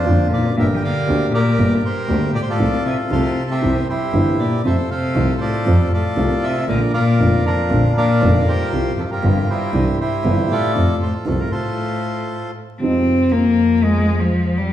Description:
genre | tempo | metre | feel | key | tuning
tango | 118 BPM | 4/4 | rubato | F major | A4 = 440 Hz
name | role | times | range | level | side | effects
bandoneon | melody | 0.0-12.5 s | D4 to G5 | -22 LUFS | equal | none
warm cello | second line | 0.0-14.7 s | F2 to C4 | -20 LUFS | left 2 dB | none
clear double bass | bass | 0.0-14.7 s | F1 to F2 | -20 LUFS | equal | none
dark upright piano | accompaniment | 0.1-14.7 s | F1 to G4 | -22 LUFS | equal | none
room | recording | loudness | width
wet large studio reverb, RT60 1.4 s | band playing live in one room, vinyl crackle | -15 LUFS | side -11 dB against mid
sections
0.0-12.8 A section; 12.8-14.7 B section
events
stop 11.8-12.8; cello solo 12.8-14.7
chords
0.0 Bb/F; 0.6 Gm; 2.6 F/C; 3.6 C; 4.6 F; 6.7 Bb; 8.7 Csus4; 9.7 Cadd9; 10.8 F; 12.8 Fm7

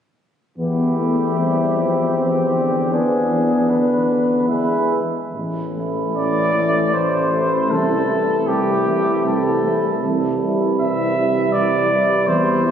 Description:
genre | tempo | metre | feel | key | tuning
classical, hymn-like piece for brass band | 67-82 BPM | 3/4 | rubato | A minor | A4 = 440 Hz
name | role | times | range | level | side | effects
mellow cornet | melody | 0.6-12.7 s | G4 to E5 | -22 LUFS | equal | none
mellow flugelhorn | second line | 0.6-12.7 s | C4 to E4 | -24 LUFS | right 2 dB | none
clear euphonium | accompaniment | 0.6-12.7 s | G3 to C4 | -23 LUFS | left 1 dB | none
warm trombone | accompaniment | 0.6-12.7 s | D3 to G3 | -27 LUFS | equal | none
warm tuba | bass | 0.6-12.7 s | A1 to E2 | -22 LUFS | equal | none
room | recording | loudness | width
wet church reverb, RT60 3.1 s | recorded on a phone in the room, club reverb | -16 LUFS | side -8 dB against mid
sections
0.6-5.3 A section; 5.3-12.7 B section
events
none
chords
0.6 Am/E; 2.9 E7; 5.3 Am; 7.7 Am/C; 10.0 C

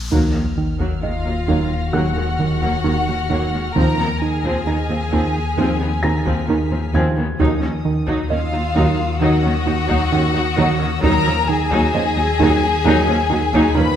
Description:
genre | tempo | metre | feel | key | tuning
cinematic, suspense film score | 66 BPM | 4/4 | straight | Eb minor | A4 = 439 Hz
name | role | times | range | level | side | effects
sub bass with octave | drone | 0.0-14.0 s | A#1 to Eb2 | -23 LUFS | left 2 dB | none
riser and sub drop | sound effects | 0.0-3.8 s | none | -28 LUFS | left 1 dB | none
rich chamber viola section | accompaniment | 0.1-13.8 s | Eb3 to Eb4 | -24 LUFS | right 1 dB | none
dark French horn section | sustained chords | 0.1-13.2 s | F3 to Eb4 | -27 LUFS | left 4 dB | none
fat analog bass | riff | 0.1-14.0 s | Eb3 to Eb4 | -22 LUFS | right 5 dB | none
rich chamber double bass section | bass | 0.1-13.8 s | Eb2 | -26 LUFS | right 2 dB | none
rich studio cello section | bass | 0.1-13.8 s | Eb2 | -26 LUFS | right 1 dB | none
taiko ensemble | drums | 0.1-14.0 s | none | -26 LUFS | left 1 dB | none
timpani | percussion | 0.1-12.4 s | Eb3 | -29 LUFS | left 1 dB | none
rich chamber violin section | texture | 0.1-14.0 s | Eb6 to Bb6 | -32 LUFS | left 6 dB | none
rich symphonic violin section | melody | 1.0-14.0 s | F5 to Cb6 | -24 LUFS | left 4 dB | none
rich chamber violin section | second line | 1.0-14.0 s | F4 to Cb5 | -25 LUFS | left 2 dB | none
felt-muted upright piano | texture | 1.9-11.1 s | Gb5 to Bb6 | -30 LUFS | left 2 dB | none
room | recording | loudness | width
moderate scoring stage reverb, RT60 1.5 s | none | -16 LUFS | side -9 dB against mid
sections
0.1-14.0 A section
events
impact 0.1-3.8; drum fill 13.8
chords
0.1 Ebmadd9; 3.8 Fm7/Eb; 7.4 Ebmadd9

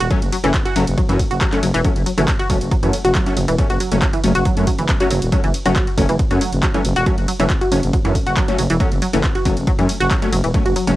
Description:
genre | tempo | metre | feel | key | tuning
driving peak-time techno | 138 BPM | 4/4 | straight | F# minor | A4 = 440 Hz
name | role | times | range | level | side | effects
tight sequenced synth | riff | 0.0-10.9 s | E3 to F#4 | -21 LUFS | equal | chorus, overdrive, sidechain pumping, analog delay
growling FM bass | bass | 0.0-11.0 s | E1 to F#2 | -20 LUFS | equal | sidechain pumping
punchy analog drum machine | drums | 0.0-11.0 s | handclaps, hi-hat, ride cymbal | -26 LUFS | equal | sidechain pumping on hats, cassette tape, sidechain pumping on cymbals
rave stab | stabs | 0.1-10.9 s | F#3 to C#4 | -22 LUFS | left 2 dB | chorus, built-in reverb, sidechain pumping, tape echo
electronic kick drum | drums | 0.1-10.6 s | none | -19 LUFS | equal | cassette tape
room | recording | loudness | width
little or no reverb | home recording on cassette | -15 LUFS | side -16 dB against mid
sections
0.0-11.0 A section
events
none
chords
0.0 F#m

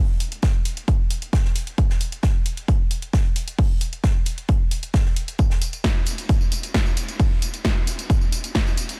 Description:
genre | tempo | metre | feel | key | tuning
techno | 133 BPM | 4/4 | straight | none | none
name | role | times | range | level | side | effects
punchy analog drum machine | drums | 0.2-9.0 s | hi-hat, snare drum, tambourine | -31 LUFS | equal | overdrive, sidechain pumping on hats, sidechain pumping on cymbals, sidechain pumping on perc
unplugged drum kit | drums | 0.2-8.9 s | hi-hat, snare drum | -43 LUFS | equal | sidechain pumping on hats, high-pass filter on hats, high-pass filter on snare, high-pass filter on room
electronic kick drum | drums | 0.4-8.6 s | none | -22 LUFS | equal | none
room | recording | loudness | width
little or no reverb | none | -22 LUFS | mono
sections
0.0-9.0 A section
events
none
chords
none

